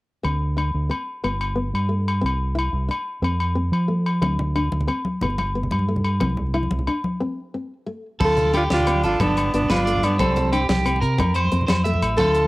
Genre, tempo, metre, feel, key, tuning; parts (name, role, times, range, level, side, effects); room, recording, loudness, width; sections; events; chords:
highlife guitar band; 121 BPM (dotted quarters); 12/8; straight; A4 = 440 Hz
nylon-string guitar; accompaniment; 0.2-12.4 s; A3 to E4; -28 LUFS; left 2 dB; cassette tape
fingered electric bass; bass; 0.2-12.5 s; G1 to F3; -22 LUFS; equal
agogo bells; percussion; 0.2-12.4 s; -28 LUFS; left 2 dB
congas; percussion; 4.2-12.5 s; -26 LUFS; left 1 dB
warm alto saxophone; melody; 8.2-12.5 s; C4 to A4; -21 LUFS; right 1 dB; plate reverb
edgy tenor saxophone; second line; 8.2-12.5 s; G3 to F4; -29 LUFS; left 2 dB; cassette tape, plate reverb
electric guitar at the edge of break-up; arpeggios; 8.2-12.5 s; G4 to E5; -25 LUFS; right 3 dB; cassette tape, plate reverb, tape echo
tight funk drum kit; drums; 8.2-12.4 s; crash cymbal, hi-hat, kick drum, snare drum; -29 LUFS; equal
light reverb; home recording on cassette; -19 LUFS; side -20 dB against mid
0.2-8.2 A section; 8.2-12.5 B section
break 7.2-8.2
0.2 Csus2/D; 1.2 G; 2.2 C; 3.2 F; 4.2 Csus2/D; 5.2 G; 6.2 C; 7.2 Am; 8.2 Dm; 9.2 G7; 10.2 C5; 11.2 F